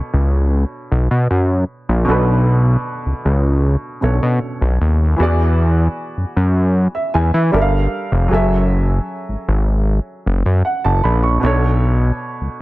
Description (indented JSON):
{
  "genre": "contemporary R&B",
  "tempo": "77 BPM",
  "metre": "4/4",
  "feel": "straight",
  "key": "B dorian",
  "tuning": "A4 = 440 Hz",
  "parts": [
    { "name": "warm baby grand piano", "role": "accompaniment", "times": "0.0-12.6 s", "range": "B2 to C#6", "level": "-21 LUFS", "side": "right 2 dB", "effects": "none" },
    { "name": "fat analog bass", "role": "bass", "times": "0.1-12.5 s", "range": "F1 to E3", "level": "-14 LUFS", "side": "equal", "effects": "none" }
  ],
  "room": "studio reverb",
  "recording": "echo-heavy mix",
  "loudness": "-14 LUFS",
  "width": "side -19 dB against mid",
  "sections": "0.0-12.6 A section",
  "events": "none",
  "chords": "0.0 Bm9; 5.2 E9; 7.5 Gm9; 8.3 F#m9; 11.4 Bm9"
}